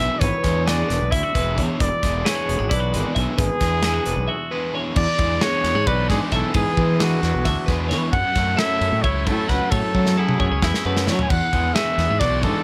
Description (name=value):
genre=math rock and midwest emo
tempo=266 BPM (eighths)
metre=7/8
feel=straight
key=unclear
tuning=A4 = 440 Hz
part: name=mellow trumpet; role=melody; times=0.0-12.6 s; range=F#4 to G#5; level=-26 LUFS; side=equal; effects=none
part: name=twangy electric guitar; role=accompaniment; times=0.0-12.6 s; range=E2 to F#4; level=-31 LUFS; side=equal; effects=none
part: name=twelve-string electric guitar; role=arpeggios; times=0.0-12.6 s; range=G#4 to F#5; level=-30 LUFS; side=equal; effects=none
part: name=biting overdriven guitar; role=riff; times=0.0-12.6 s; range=E3 to G#4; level=-31 LUFS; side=equal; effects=none
part: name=fuzz fingered electric bass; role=bass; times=0.0-12.5 s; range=E1 to F#3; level=-26 LUFS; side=equal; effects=overdrive
part: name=loose indie drum kit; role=drums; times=0.2-12.5 s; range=crash cymbal, hi-hat, kick drum, ride cymbal, snare drum, toms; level=-26 LUFS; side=equal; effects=none
room=little or no reverb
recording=none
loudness=-20 LUFS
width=mono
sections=0.0-5.0 A section; 5.0-12.6 B section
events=break 4.3-5.0; drum fill 9.9-11.3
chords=0.0 E9; 8.1 F#m7; 11.3 E9